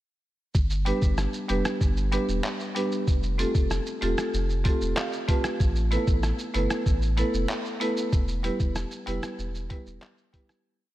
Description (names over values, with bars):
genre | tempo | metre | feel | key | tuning
dancehall | 95 BPM | 4/4 | straight | E phrygian | A4 = 440 Hz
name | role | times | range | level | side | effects
sub bass with octave | bass | 0.5-10.0 s | E1 to A1 | -28 LUFS | equal | none
lo-fi sampler-style drum kit | drums | 0.5-10.6 s | handclaps, hi-hat, kick drum, rim click, shaker | -27 LUFS | equal | none
marimba with medium hard mallets | accompaniment | 0.9-10.5 s | G3 to A5 | -28 LUFS | equal | none
room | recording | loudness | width
light reverb, digital ambience | none | -24 LUFS | side -15 dB against mid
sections
0.5-10.7 chorus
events
marimba fill 4.7-5.6; fade-out 8.1-10.7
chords
0.5 G; 3.1 Fadd9; 5.6 Asus2; 8.1 Em